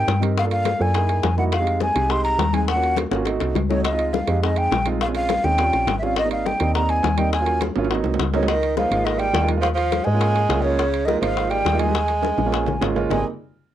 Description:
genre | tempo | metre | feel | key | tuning
Afro-Cuban jazz | 207 BPM | 4/4 | straight | Ab major | A4 = 440 Hz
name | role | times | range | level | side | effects
breathy mellow silver concert flute | melody | 0.0-13.2 s | Db5 to C6 | -23 LUFS | left 1 dB | cassette tape
warm grand piano | accompaniment | 0.0-13.2 s | Gb3 to Bb4 | -25 LUFS | right 5 dB | cassette tape
woody FM bass | bass | 0.0-13.2 s | Ab1 to Ab2 | -24 LUFS | equal | none
bongos | percussion | 0.1-13.2 s | none | -28 LUFS | left 9 dB | none
congas | percussion | 0.1-13.2 s | none | -30 LUFS | left 9 dB | none
timbales | percussion | 0.1-13.2 s | none | -32 LUFS | right 10 dB | none
clear tenor saxophone | second line | 8.3-13.2 s | Db3 to Ab3 | -26 LUFS | right 7 dB | cassette tape
room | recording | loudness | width
moderate small room ambience, RT60 0.5 s | home recording on cassette | -18 LUFS | side -11 dB against mid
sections
0.0-8.5 A section; 8.5-13.1 B section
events
drum fill 3.1-3.8, 7.8-8.5, 12.2-13.1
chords
0.4 Gm9; 0.9 Gb13; 1.5 Fm7; 2.7 Ebm7; 3.3 Ab7b9; 3.8 Dbmaj7; 5.0 Bbm9; 5.6 Eb13; 6.2 Abmaj7; 7.3 Ebm7; 7.9 Ab7; 8.5 Db69; 9.6 Eb9sus4; 10.8 Db69; 12.0 Eb9sus4; 13.1 Abmaj7

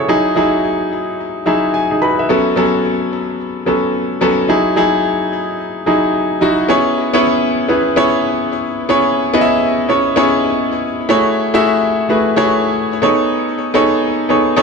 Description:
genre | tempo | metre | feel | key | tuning
R&B | 109 BPM | 4/4 | swing 63% on 16ths | C# minor | A4 = 440 Hz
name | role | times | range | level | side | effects
clear grand piano | solo | 0.0-14.6 s | F#3 to B5 | -12 LUFS | equal | ping-pong delay
room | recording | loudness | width
moderate plate reverb, RT60 2.6 s | none | -13 LUFS | side -4 dB against mid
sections
0.0-6.7 A section; 6.7-14.6 B section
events
grand piano fill 1.2-2.3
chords
0.1 Emaj9; 2.3 A69; 4.5 Emaj9; 6.7 C#m7; 11.1 F#m9; 13.0 B13

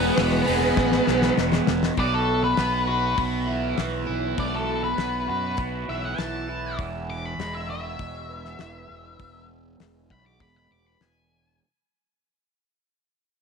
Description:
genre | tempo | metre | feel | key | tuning
psychedelic rock | 100 BPM | 4/4 | straight | unclear | A4 = 441 Hz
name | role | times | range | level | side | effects
octave-fuzz lead guitar | melody | 0.0-11.6 s | B3 to D6 | -27 LUFS | left 2 dB | distortion, slapback echo
combo organ | sustained chords | 0.0-11.6 s | B3 to E6 | -38 LUFS | right 15 dB | phaser, low-pass filter
overdriven electric guitar | riff | 0.0-11.6 s | E2 to G#4 | -26 LUFS | right 2 dB | phaser, low-pass filter
fuzz fingered electric bass | bass | 0.0-11.6 s | E1 to F#2 | -30 LUFS | right 1 dB | overdrive
damped 70s drum kit | drums | 0.2-11.1 s | hi-hat, kick drum, snare drum | -28 LUFS | left 5 dB | none
congas | percussion | 0.3-1.8 s | none | -35 LUFS | left 10 dB | none
room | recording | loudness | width
light reverb | 1960s-style stereo with parts hard left and right | -22 LUFS | side -5 dB against mid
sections
0.0-2.0 A section; 2.0-11.6 B section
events
drum fill 0.8-2.0; fade-out 2.0-11.6; lead electric guitar solo 2.0-11.6; filter sweep 2.0-11.6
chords
0.0 Eadd9; 2.0 Bsus4; 6.8 Eadd9

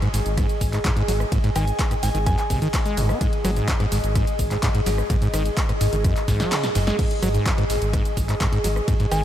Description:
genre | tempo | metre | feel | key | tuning
acid house | 127 BPM | 4/4 | straight | unclear | A4 = 440 Hz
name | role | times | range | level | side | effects
acid bass, saw | riff | 0.0-9.2 s | Gb2 to C4 | -25 LUFS | equal | tube saturation, cassette tape, analog delay
dusty soul sampler-style drum kit | drums | 0.0-9.2 s | hi-hat, ride cymbal, snare drum | -39 LUFS | right 3 dB | none
punchy analog drum machine | drums | 0.0-9.2 s | crash cymbal, handclaps, hi-hat, ride cymbal, rim click, shaker, snare drum | -29 LUFS | equal | none
ethereal airy pad | texture | 0.0-9.2 s | Ab4 to Ab5 | -28 LUFS | equal | ensemble chorus, built-in reverb, sidechain pumping
round analog bass | bass | 0.1-9.2 s | Gb1 to Ab1 | -24 LUFS | equal | sidechain pumping
electronic kick drum | drums | 0.4-9.0 s | none | -23 LUFS | equal | none
soft synth bell | melody | 1.6-2.5, 9.1-9.2 s | Ab5 | -30 LUFS | equal | chorus, analog delay
room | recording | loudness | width
light reverb | none | -19 LUFS | side -11 dB against mid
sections
0.0-9.2 A section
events
drum fill 6.3-7.0; kick drops out 6.5-7.0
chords
0.0 Ab5

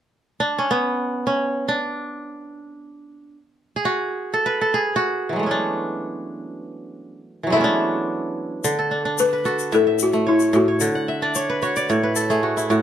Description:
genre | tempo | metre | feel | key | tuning
west african traditional, West African string and xylophone music | free time | none | none | D lydian | A4 = 440 Hz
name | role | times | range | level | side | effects
kora | arpeggios | 0.4-12.8 s | A2 to F#5 | -20 LUFS | right 1 dB | none
egg shaker | percussion | 8.6-12.8 s | none | -29 LUFS | left 9 dB | none
balafon | melody | 9.2-12.7 s | E4 to B4 | -19 LUFS | left 4 dB | slapback echo
room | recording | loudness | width
light reverb | close, detailed microphones, lossy compression artefacts | -19 LUFS | side -10 dB against mid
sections
0.0-8.6 A section; 8.6-12.8 B section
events
kora solo 0.0-8.6; kora fill 10.9-12.8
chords
0.0 D; 9.7 A; 10.8 D; 11.9 N.C.

